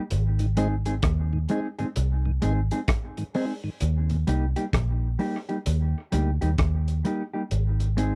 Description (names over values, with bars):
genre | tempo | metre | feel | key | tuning
dub reggae | 65 BPM | 4/4 | swing 63% on 16ths | Eb major | A4 = 440 Hz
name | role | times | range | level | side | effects
vintage muted fingered electric bass | bass | 0.1-8.2 s | Ab1 to Eb2 | -26 LUFS | equal | none
crunchy breakbeat drum kit | drums | 0.1-8.2 s | hi-hat, kick drum, rim click | -31 LUFS | equal | none
mellow tonewheel organ | accompaniment | 0.4-4.2 s | Eb2 to Eb4 | -32 LUFS | equal | slow rotary speaker
mellow electric guitar | accompaniment | 0.6-8.1 s | G3 to Ab4 | -31 LUFS | equal | tape echo
room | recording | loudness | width
little or no reverb | dry, close 1970s-style studio recording | -26 LUFS | mono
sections
0.0-8.2 A section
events
none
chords
0.1 Ab; 3.8 Eb; 7.5 Ab